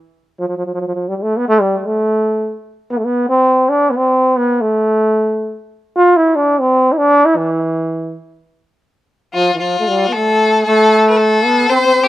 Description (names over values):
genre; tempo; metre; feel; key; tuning
Arabic maqam ensemble; 76 BPM (dotted quarters); 6/8; straight; unclear; A4 = 435 Hz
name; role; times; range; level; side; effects
warm trombone; melody; 0.4-12.1 s; E3 to F#4-44c; -12 LUFS; equal; none
clear violin; second line; 9.3-12.1 s; F#4-49c to C5; -14 LUFS; left 4 dB; none
room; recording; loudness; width
little or no reverb; recorded outdoors, with no room sound; -12 LUFS; side -15 dB against mid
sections
0.0-9.3 A section; 9.3-12.1 B section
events
none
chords
none